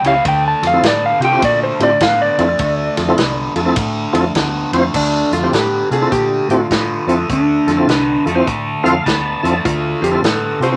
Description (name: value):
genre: electric blues shuffle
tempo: 102 BPM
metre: 4/4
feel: swing 65% on 8ths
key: D minor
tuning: A4 = 440 Hz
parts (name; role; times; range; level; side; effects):
- electric slide guitar; melody; 0.0-10.7 s; D4 to A5; -18 LUFS; equal; none
- overdriven semi-hollow guitar; riff; 0.0-10.8 s; A2 to B3; -23 LUFS; equal; phaser
- vintage muted fingered electric bass; bass; 0.0-10.8 s; C2 to C3; -25 LUFS; equal; none
- natural country drum kit; drums; 0.0-10.7 s; crash cymbal, hi-hat, kick drum, ride cymbal, snare drum; -23 LUFS; equal; none
- tonewheel organ; accompaniment; 0.1-10.8 s; C4 to A5; -19 LUFS; equal; slow rotary speaker, chorus vibrato
room: moderate studio ambience, RT60 0.4 s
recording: none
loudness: -15 LUFS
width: mono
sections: 0.0-4.9 A section; 4.9-10.8 B section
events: electric slide guitar solo 0.0-4.9; tonewheel organ fill 8.5-9.7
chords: 0.3 Dm7